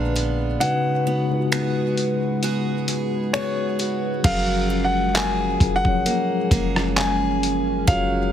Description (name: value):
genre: contemporary R&B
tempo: 66 BPM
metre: 4/4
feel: swing 54% on 16ths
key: F# major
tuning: A4 = 441 Hz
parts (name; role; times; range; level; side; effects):
- clear concert grand piano; melody; 0.0-8.3 s; C#5 to G#5; -25 LUFS; left 2 dB; digital delay
- mellow tine electric piano; accompaniment; 0.0-8.3 s; C#3 to C#5; -25 LUFS; left 3 dB; medium stereo tremolo
- chorused pulse-width pad; sustained chords; 0.0-8.3 s; A#2 to A#5; -27 LUFS; right 3 dB; sidechain pumping
- picked steel-string acoustic guitar; arpeggios; 0.0-8.3 s; A#2 to G#4; -28 LUFS; right 5 dB; digital delay
- clean 808-style bass; bass; 0.0-8.3 s; F#1 to A#1; -26 LUFS; equal; none
- dusty soul sampler-style drum kit; drums; 0.2-8.1 s; crash cymbal, finger snaps, handclaps, hi-hat, kick drum, rim click; -24 LUFS; equal; overdrive
room: little or no reverb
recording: heavily compressed radio sound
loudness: -19 LUFS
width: side -10 dB against mid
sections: 0.0-4.2 A section; 4.2-8.3 B section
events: kick muted 0.6-4.2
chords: 0.0 A#7b9; 0.6 C#7sus4; 4.2 F#maj9